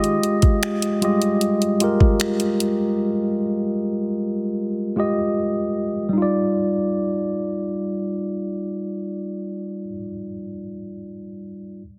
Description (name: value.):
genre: contemporary R&B.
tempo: 76 BPM.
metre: 4/4.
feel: straight.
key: Eb major.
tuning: A4 = 440 Hz.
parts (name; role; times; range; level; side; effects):
mellow tine electric piano; accompaniment; 0.0-11.8 s; G3 to Eb5; -24 LUFS; equal; none.
smooth R&B drum kit; drums; 0.0-2.8 s; finger snaps, hi-hat, kick drum; -20 LUFS; equal; soft clipping on snare.
room: light reverb, digital ambience.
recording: dense, heavily limited modern master.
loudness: -22 LUFS.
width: mono.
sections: 0.0-6.2 A section; 6.2-9.3 B section.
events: none.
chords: 0.0 Fm9; 6.2 Ebmaj9.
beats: 0.63 1.42 2.20 | 2.99 3.78 4.57 5.36 | 6.15 6.94 7.73 8.52.